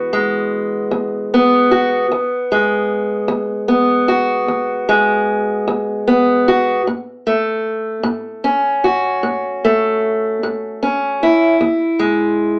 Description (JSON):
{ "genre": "blues", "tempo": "51 BPM (dotted quarters)", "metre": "12/8", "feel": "straight", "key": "E major", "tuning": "A4 = 440 Hz", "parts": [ { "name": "fingerpicked steel-string acoustic guitar", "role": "solo", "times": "0.0-12.6 s", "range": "E2 to F#4", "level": "-16 LUFS", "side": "equal", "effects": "none" } ], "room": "moderate studio reverb, RT60 0.6 s", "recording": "small speaker sound", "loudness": "-17 LUFS", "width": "mono", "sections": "0.0-12.6 A section", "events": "none", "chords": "0.0 E; 6.8 A; 11.6 E" }